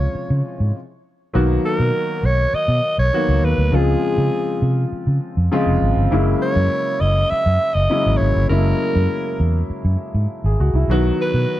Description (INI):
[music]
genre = polished 1980s jazz-funk pop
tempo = 100 BPM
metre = 4/4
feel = straight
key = unclear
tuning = A4 = 440 Hz
[part]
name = raspy alto saxophone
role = melody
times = 0.0-11.6 s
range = Ab4 to Fb5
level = -21 LUFS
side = right 1 dB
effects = slapback echo
[part]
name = warm grand piano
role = accompaniment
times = 0.0-11.6 s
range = C3 to Ab4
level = -22 LUFS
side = left 2 dB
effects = lush chorus
[part]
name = vintage muted fingered electric bass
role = bass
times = 0.0-11.4 s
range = F1 to Db3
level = -17 LUFS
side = equal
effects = none
[sound]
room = studio reverb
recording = dry, close 1970s-style studio recording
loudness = -16 LUFS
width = side -14 dB against mid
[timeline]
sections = 0.0-1.3 A section; 1.3-11.6 A section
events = stop 0.7-1.3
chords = 0.0 Dbmaj7; 1.3 Cbmaj7; 3.7 Dbmaj7; 6.1 Gb9; 10.9 Cb